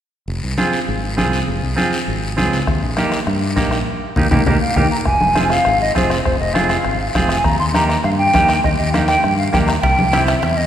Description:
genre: latin, cumbia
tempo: 201 BPM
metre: 4/4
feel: straight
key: F minor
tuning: A4 = 440 Hz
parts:
  - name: fingered electric bass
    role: bass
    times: 0.3-10.7 s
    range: F1 to G2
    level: -21 LUFS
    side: equal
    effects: none
  - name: guiro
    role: percussion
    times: 0.3-10.7 s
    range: none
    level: -28 LUFS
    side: left 3 dB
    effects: none
  - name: clean electric guitar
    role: accompaniment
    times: 0.6-10.3 s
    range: Bb3 to Ab4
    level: -21 LUFS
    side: right 2 dB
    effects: none
  - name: congas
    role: percussion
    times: 0.6-10.3 s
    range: none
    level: -23 LUFS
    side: equal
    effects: none
  - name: bombo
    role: percussion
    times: 2.7-10.6 s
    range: none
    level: -22 LUFS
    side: left 1 dB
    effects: none
  - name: hollow concert flute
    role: melody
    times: 4.6-10.7 s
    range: C5 to C6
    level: -17 LUFS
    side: equal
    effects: none
  - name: timbales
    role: percussion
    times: 9.8-10.6 s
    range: none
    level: -27 LUFS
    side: right 4 dB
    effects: none
room: wet scoring stage reverb, RT60 2.1 s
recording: recorded in a church or concert hall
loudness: -14 LUFS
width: side -10 dB against mid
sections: 0.3-5.1 A section; 5.1-10.7 B section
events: band accent 3.9-5.1; drum fill 4.6-5.1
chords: 0.3 Fm; 2.7 Eb; 5.1 Fm; 7.5 Eb; 9.8 C

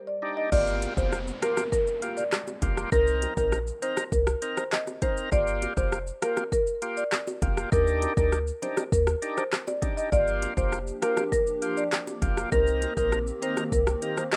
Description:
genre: dancehall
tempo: 100 BPM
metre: 4/4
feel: straight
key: G minor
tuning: A4 = 442 Hz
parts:
  - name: hollow soft pad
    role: sustained chords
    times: 0.0-0.5, 10.4-14.4 s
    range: Eb3 to D5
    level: -38 LUFS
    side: equal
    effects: ensemble chorus, sidechain pumping
  - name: marimba with medium mallets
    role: melody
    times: 0.1-14.4 s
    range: Bb4 to Eb5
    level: -30 LUFS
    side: equal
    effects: none
  - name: tonewheel organ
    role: accompaniment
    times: 0.2-14.2 s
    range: Bb3 to Bb4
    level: -34 LUFS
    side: equal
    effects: overdrive, slow rotary speaker
  - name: clean 808-style bass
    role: bass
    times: 0.5-13.9 s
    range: F1 to Eb2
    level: -32 LUFS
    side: equal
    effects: none
  - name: afro-pop drum kit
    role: drums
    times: 0.5-14.4 s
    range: crash cymbal, handclaps, hi-hat, kick drum, rim click, shaker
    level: -32 LUFS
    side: equal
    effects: overdrive, vintage 12-bit sampler grit
  - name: downlifter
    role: sound effects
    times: 0.5-5.3 s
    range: none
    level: -45 LUFS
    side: equal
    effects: none
  - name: bongos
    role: percussion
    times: 0.8-14.4 s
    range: none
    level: -40 LUFS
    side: equal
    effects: none
room: little or no reverb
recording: rough home demo mix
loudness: -27 LUFS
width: mono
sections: 0.5-14.4 A section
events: break 0.0-0.5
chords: 0.0 Ebmaj7; 0.5 Gm7; 2.9 Cm7; 5.3 Gm7; 7.7 Ebmaj7; 10.1 Gm7; 12.5 Cm7

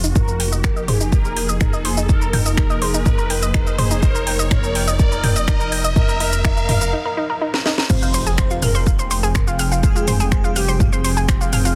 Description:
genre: melodic techno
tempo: 124 BPM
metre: 4/4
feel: straight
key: F minor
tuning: A4 = 440 Hz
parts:
  - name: lush unison pad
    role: sustained chords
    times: 0.0-11.8 s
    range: F3 to G5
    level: -32 LUFS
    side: equal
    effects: chorus, phaser, sidechain pumping
  - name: analog pluck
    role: arpeggios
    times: 0.0-11.7 s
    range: Eb4 to F6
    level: -27 LUFS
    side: equal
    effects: chorus, vintage 12-bit sampler grit, sidechain pumping, digital delay
  - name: dark detuned saw bass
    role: bass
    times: 0.0-11.8 s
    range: F1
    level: -25 LUFS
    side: equal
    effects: sidechain pumping
  - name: house drum kit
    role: drums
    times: 0.0-11.7 s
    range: crash cymbal, finger snaps, hi-hat, shaker, snare drum, toms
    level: -25 LUFS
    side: equal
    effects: soft clipping on snare
  - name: riser and impact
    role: sound effects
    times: 0.0-9.8 s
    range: none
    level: -31 LUFS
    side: equal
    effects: none
  - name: mellow synth brass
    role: melody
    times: 0.2-10.8 s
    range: G4 to C5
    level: -30 LUFS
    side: equal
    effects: chorus, phaser, sidechain pumping, digital delay
  - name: electronic kick drum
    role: drums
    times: 0.2-11.4 s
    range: none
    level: -20 LUFS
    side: equal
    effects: none
  - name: airy dreamy lead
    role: second line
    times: 7.9-10.8 s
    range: G3 to C4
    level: -33 LUFS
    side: equal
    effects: chorus, sidechain pumping, digital delay
room: light reverb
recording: dense, heavily limited modern master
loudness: -18 LUFS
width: mono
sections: 0.0-7.9 A section; 7.9-11.8 B section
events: build-up 0.0-7.9; riser 0.0-6.9; filter sweep on analog synth pad 0.0-7.9; break 6.9-7.9; drum fill 7.5-7.9; drop 7.9-11.8; impact 7.9-9.8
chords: 0.2 Ebsus2/F; 7.9 Fm

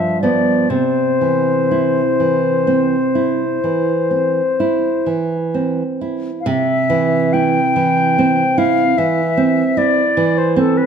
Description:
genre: romantic duo for flute and classical guitar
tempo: 40-51 BPM (dotted quarters)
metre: 12/8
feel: rubato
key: C major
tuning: A4 = 440 Hz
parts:
  - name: concert flute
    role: melody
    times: 0.0-10.9 s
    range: A4 to G5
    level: -17 LUFS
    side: left 5 dB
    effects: slapback echo
  - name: nylon-string guitar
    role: accompaniment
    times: 0.0-10.9 s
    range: G2 to E4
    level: -16 LUFS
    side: right 4 dB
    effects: none
room: moderate recital hall reverb, RT60 1.5 s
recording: none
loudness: -14 LUFS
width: side -7 dB against mid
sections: 0.0-6.5 A section; 6.5-10.9 A section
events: none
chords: 0.0 G7; 0.7 C

